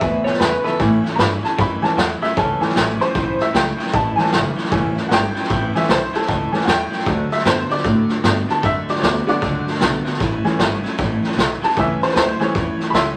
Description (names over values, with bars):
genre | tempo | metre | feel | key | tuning
rockabilly | 153 BPM | 4/4 | swing 62% on 8ths | A mixolydian | A4 = 440 Hz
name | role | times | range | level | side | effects
electric guitar through a small old amp | melody | 0.0-0.8 s | A4 to E5 | -23 LUFS | equal | none
picked steel-string acoustic guitar | accompaniment | 0.0-13.2 s | E2 to F#4 | -30 LUFS | equal | none
tack piano | accompaniment | 0.0-13.2 s | E3 to C6 | -23 LUFS | equal | none
electric guitar at the edge of break-up | riff | 0.0-13.2 s | E2 to B3 | -30 LUFS | equal | none
upright bass | bass | 0.0-13.2 s | E1 to A2 | -26 LUFS | equal | none
raw garage drum kit | drums | 0.0-13.1 s | hi-hat, kick drum, snare drum | -23 LUFS | equal | none
room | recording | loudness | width
wet studio reverb, RT60 0.5 s | vinyl crackle | -18 LUFS | mono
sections
0.8-13.2 A section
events
honky-tonk piano solo 0.8-13.2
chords
0.0 E; 0.8 A; 7.1 D; 10.2 A